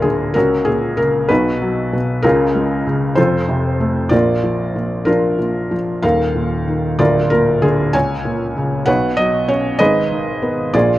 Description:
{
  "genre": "classical, lyrical solo piano",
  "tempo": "63 BPM (dotted quarters)",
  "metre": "6/8",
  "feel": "rubato",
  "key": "unclear",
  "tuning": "A4 = 440 Hz",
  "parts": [
    { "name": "felt-muted upright piano", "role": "solo", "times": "0.0-11.0 s", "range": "D1 to Ab5", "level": "-14 LUFS", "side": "equal", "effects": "none" }
  ],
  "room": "little or no reverb",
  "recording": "close, detailed microphones",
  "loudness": "-14 LUFS",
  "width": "side -15 dB against mid",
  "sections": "0.0-11.0 A section",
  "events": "none",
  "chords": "0.4 Gb/Db; 1.3 B; 2.2 Db; 3.2 F; 4.1 Bb; 6.0 Ebsus2; 7.0 Bb/D; 7.9 Bbm7/Db; 8.9 Bsus2; 9.8 Abm"
}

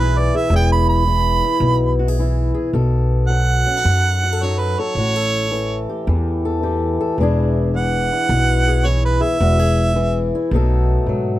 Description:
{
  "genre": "acoustic country blues, solo or duo",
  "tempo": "108 BPM",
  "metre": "4/4",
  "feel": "swing 65% on 8ths",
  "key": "E mixolydian",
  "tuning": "A4 = 440 Hz",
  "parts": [
    { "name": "clear harmonica", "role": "melody", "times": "0.0-10.3 s", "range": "B4 to B5", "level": "-20 LUFS", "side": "right 4 dB", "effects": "none" },
    { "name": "fingerpicked swing-style acoustic guitar", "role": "accompaniment", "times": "0.0-11.4 s", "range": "E2 to A4", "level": "-21 LUFS", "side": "left 3 dB", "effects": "none" },
    { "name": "upright bass", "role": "bass", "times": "0.0-11.4 s", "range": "E1 to G#2", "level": "-18 LUFS", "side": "equal", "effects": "none" }
  ],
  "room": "little or no reverb",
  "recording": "close, detailed microphones",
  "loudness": "-15 LUFS",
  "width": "side -15 dB against mid",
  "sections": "0.0-11.4 A section",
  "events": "harmonica solo 0.0-11.4",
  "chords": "0.0 E; 2.7 B7; 5.0 A7; 7.2 E7; 10.5 B7"
}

